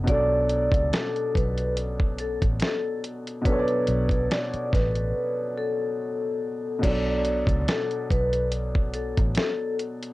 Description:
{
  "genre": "lo-fi hip hop",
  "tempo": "71 BPM",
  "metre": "4/4",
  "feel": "swing 56% on 16ths",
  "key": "B minor",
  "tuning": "A4 = 439 Hz",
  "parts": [
    { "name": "clear upright piano", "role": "accompaniment", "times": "0.0-10.1 s", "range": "B2 to D5", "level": "-29 LUFS", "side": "equal", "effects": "none" },
    { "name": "vintage muted fingered electric bass", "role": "bass", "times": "0.0-9.4 s", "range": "A1 to C#2", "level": "-28 LUFS", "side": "equal", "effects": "none" },
    { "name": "vibraphone with medium mallets", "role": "melody", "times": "0.1-9.7 s", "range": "A4 to D5", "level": "-28 LUFS", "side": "left 1 dB", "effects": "none" },
    { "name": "dusty soul sampler-style drum kit", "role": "drums", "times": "0.1-10.1 s", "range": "crash cymbal, hi-hat, kick drum, snare drum", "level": "-25 LUFS", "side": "equal", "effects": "none" }
  ],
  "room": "little or no reverb",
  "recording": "dry, gritty hardware recording, cassette tape",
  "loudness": "-23 LUFS",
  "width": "side -19 dB against mid",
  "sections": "0.0-6.8 A section; 6.8-10.1 A section",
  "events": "break 5.1-6.8",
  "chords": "0.0 Bm9; 6.8 Bm7"
}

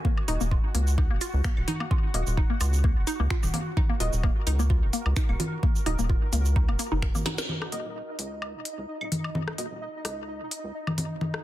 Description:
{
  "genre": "minimal techno",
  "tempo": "129 BPM",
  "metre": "4/4",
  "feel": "swing 54% on 16ths",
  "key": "Eb minor",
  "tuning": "A4 = 442 Hz",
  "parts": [
    { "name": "hollow square pluck", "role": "riff", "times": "0.0-7.4 s", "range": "Bb3 to Bb4", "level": "-33 LUFS", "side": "equal", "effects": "chorus, phaser, sidechain pumping, dub echo" },
    { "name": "electronic kick drum", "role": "drums", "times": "0.0-7.1 s", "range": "none", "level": "-25 LUFS", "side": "equal", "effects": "none" },
    { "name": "electronic congas, woodblock, claves and rim click", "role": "percussion", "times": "0.0-11.4 s", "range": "none", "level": "-32 LUFS", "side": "left 1 dB", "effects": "soft clipping on snare, ping-pong delay" },
    { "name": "pulsing gated texture", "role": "texture", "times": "0.0-11.4 s", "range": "Eb4 to Gb5", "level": "-38 LUFS", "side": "equal", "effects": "chorus, built-in reverb, sidechain pumping" },
    { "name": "filtered dub chord stab", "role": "stabs", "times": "0.3-9.7 s", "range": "Bb3 to Eb5", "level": "-37 LUFS", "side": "left 1 dB", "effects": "lush chorus, ping-pong delay" },
    { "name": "rubbery square bass", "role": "bass", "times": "0.3-11.0 s", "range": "Eb1 to Db2", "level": "-26 LUFS", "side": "equal", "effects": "sidechain pumping, high-pass filter" },
    { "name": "minimal click drum kit", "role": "drums", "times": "0.3-11.1 s", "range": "finger snaps, hi-hat, shaker, snare drum", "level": "-33 LUFS", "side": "right 1 dB", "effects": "soft clipping on snare" }
  ],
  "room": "little or no reverb",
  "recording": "dense, heavily limited modern master",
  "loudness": "-24 LUFS",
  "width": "side -14 dB against mid",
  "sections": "0.0-7.5 A section; 7.5-11.4 B section",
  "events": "drum fill 7.3; band accent 7.4",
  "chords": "0.0 Ebm; 7.5 N.C."
}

